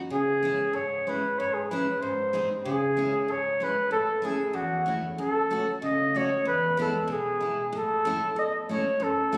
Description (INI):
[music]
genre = alpine folk, alpine dance band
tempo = 95 BPM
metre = 2/4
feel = straight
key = unclear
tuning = A4 = 438 Hz
[part]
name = warm flugelhorn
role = melody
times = 0.1-9.4 s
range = F#4 to D#5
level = -28 LUFS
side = equal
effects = none
[part]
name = picked steel-string acoustic guitar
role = accompaniment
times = 0.1-9.4 s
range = E2 to F#4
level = -34 LUFS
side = equal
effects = none
[sound]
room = wet concert hall reverb, RT60 2.2 s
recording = recorded on a phone in the room, club reverb, compression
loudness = -27 LUFS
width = mono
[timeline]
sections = 0.0-9.4 A section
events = none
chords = 0.1 C#m; 2.0 G#; 2.6 C#m; 3.9 A; 5.2 F#m; 6.4 E; 7.7 A